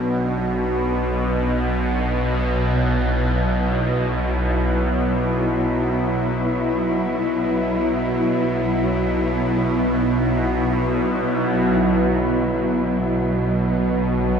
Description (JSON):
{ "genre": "dark ambient drone", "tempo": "free time", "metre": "none", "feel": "none", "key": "B minor", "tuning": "A4 = 441 Hz", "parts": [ { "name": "muted symphonic cello section", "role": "sustained chords", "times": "0.0-14.4 s", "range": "B2 to E4", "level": "-23 LUFS", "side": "equal", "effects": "stereo widening" }, { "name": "bowed-like drone", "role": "drone", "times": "0.0-14.4 s", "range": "B1 to B2", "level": "-20 LUFS", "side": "equal", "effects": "built-in reverb, phaser" }, { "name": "gamelan-type bronze metallophone", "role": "arpeggios", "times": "11.8-14.4 s", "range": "none", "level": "barely audible", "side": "none", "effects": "none" } ], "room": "wet huge ambient reverb, RT60 8.2 s", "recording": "none", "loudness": "-18 LUFS", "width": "side -6 dB against mid", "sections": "0.0-11.8 A section; 11.8-14.4 B section", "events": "fade-in on cello section 0.0-11.8", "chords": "0.0 Bm" }